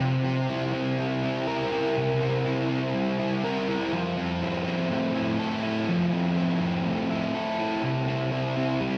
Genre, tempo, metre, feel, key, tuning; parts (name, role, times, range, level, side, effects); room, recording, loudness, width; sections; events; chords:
rock; 122 BPM; 4/4; straight; C mixolydian; A4 = 440 Hz
fuzz guitar; solo; 0.0-9.0 s; C3 to Bb4; -27 LUFS; equal; distortion, subtle chorus, tape echo
wet lush hall reverb, RT60 2.7 s; dreamy mix soaked in reverb; -27 LUFS; mono
0.0-9.0 A section
0.0 C7; 3.9 Fmaj7; 7.8 C